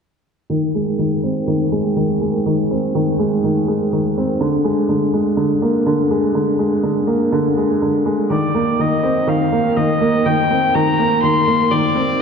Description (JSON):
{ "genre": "electronica", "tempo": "123 BPM", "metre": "4/4", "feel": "straight", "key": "unclear", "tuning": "A4 = 440 Hz", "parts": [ { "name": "felt-muted upright piano", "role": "riff", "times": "0.5-12.2 s", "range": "D3 to C4", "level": "-15 LUFS", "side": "equal", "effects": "low-pass filter, tape echo" }, { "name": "rich violin", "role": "melody", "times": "8.3-12.2 s", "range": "D5 to C6", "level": "-18 LUFS", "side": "left 1 dB", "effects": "none" } ], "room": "wet scoring stage reverb, RT60 1.6 s", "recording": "low-pass filter", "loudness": "-15 LUFS", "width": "side -6 dB against mid", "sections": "0.5-12.2 A section", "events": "filter sweep on felt piano 0.5-12.2; filter sweep 0.5-12.2", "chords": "0.5 Ebsus4; 4.4 Bb7; 8.3 Cm7" }